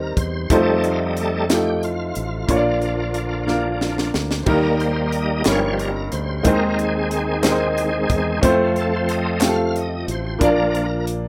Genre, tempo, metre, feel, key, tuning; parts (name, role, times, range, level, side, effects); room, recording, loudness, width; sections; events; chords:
slow gospel; 60 BPM (dotted quarters); 6/8; straight; A4 = 440 Hz
warm upright piano; accompaniment; 0.0-11.3 s; G2 to D5; -23 LUFS; equal
bright tonewheel organ; sustained chords; 0.0-11.1 s; Eb3 to F5; -26 LUFS; equal; slow rotary speaker, chorus vibrato
mellow French horn section; sustained chords; 0.0-11.3 s; D3 to F4; -35 LUFS; equal
fingered electric bass; bass; 0.0-11.3 s; G1 to F2; -28 LUFS; equal
crisp fusion drum kit; drums; 0.2-11.2 s; crash cymbal, hi-hat, kick drum, snare drum; -25 LUFS; equal
group handclap; percussion; 5.4-9.7 s; -30 LUFS; equal
moderate small room reverb, RT60 0.6 s; rough home demo mix; -20 LUFS; mono
0.0-11.3 A section
tonewheel organ solo 0.0-11.3; drum fill 3.5-4.5
0.5 F7; 2.5 Bb; 4.5 Eb; 5.5 Eb7/G; 6.5 Ab/Eb; 8.4 F; 10.4 Bb